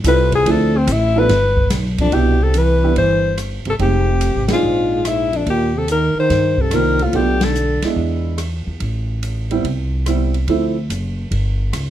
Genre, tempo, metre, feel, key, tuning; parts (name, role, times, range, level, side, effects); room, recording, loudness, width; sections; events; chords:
jazz, small-group swing and bop; 144 BPM; 4/4; swing 67% on 8ths; C major; A4 = 440 Hz
upright bass; bass; 0.0-11.9 s; F1 to G2; -19 LUFS; equal
open jazz drum kit; drums; 0.0-11.9 s; hi-hat, kick drum, ride cymbal, rim click, snare drum; -26 LUFS; equal
clear alto saxophone; melody; 0.1-7.8 s; C4 to C5; -18 LUFS; left 4 dB; plate reverb
warm upright piano; accompaniment; 0.1-10.7 s; F3 to A4; -20 LUFS; right 5 dB
growling trombone; second line; 2.0-7.8 s; F2 to E3; -21 LUFS; right 4 dB
light reverb; dark, warm production; -15 LUFS; side -12 dB against mid
0.0-2.1 A section; 2.1-11.9 B section
alto saxophone solo 0.0-2.1; band accent 4.4, 7.3
0.5 Dm9; 1.3 G; 2.1 Cmaj7; 3.8 Fm7; 4.6 Bb7; 5.5 Eb6; 7.1 Bm7b5; 8.0 E7; 8.8 Am7; 10.5 Dm7; 11.3 N.C.